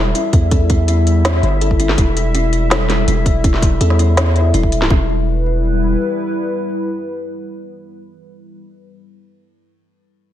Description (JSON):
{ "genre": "half-time drum and bass", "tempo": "164 BPM", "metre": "4/4", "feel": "half-time", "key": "E minor", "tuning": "A4 = 440 Hz", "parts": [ { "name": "dark analog pad", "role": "sustained chords", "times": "0.0-8.6 s", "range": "G3 to E5", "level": "-22 LUFS", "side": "left 1 dB", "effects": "chorus, phaser, sidechain pumping" }, { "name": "long sustained 808-style bass", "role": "bass", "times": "0.0-6.0 s", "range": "E1 to E2", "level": "-15 LUFS", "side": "equal", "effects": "none" }, { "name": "organic electronic drum kit", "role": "drums", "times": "0.1-4.9 s", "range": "hi-hat, snare drum", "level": "-20 LUFS", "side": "equal", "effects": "none" }, { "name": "kalimba", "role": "arpeggios", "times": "0.2-5.1 s", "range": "E4 to A4", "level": "-23 LUFS", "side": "left 2 dB", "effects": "vintage 12-bit sampler grit, ping-pong delay" }, { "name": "electronic kick drum", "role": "drums", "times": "0.3-5.0 s", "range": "none", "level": "-15 LUFS", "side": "equal", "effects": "none" } ], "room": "light reverb", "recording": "none", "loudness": "-13 LUFS", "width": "side -12 dB against mid", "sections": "0.0-4.9 A section; 4.9-7.8 B section", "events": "drop 0.0-4.9", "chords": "0.0 Em" }